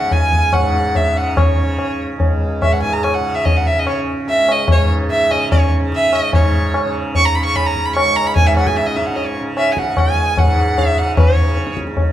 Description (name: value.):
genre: indian classical, Hindustani.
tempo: 147 BPM.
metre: 3/4.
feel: straight.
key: C# raga bhimpalasi.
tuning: A4 = 440 Hz.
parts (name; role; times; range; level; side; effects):
rich violin; melody; 0.0-11.7 s; C#5 to C#6; -17 LUFS; right 1 dB; none.
tanpura; drone; 0.0-12.1 s; C#2 to C#3; -22 LUFS; right 1 dB; none.
tabla; percussion; 0.1-12.1 s; none; -16 LUFS; left 1 dB; none.
room: wet large studio reverb, RT60 1.5 s.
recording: band playing live in one room, faint mains hum.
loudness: -13 LUFS.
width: side -12 dB against mid.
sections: 0.0-6.3 A section; 6.3-12.1 B section.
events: speeding up 0.0-12.1.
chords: none.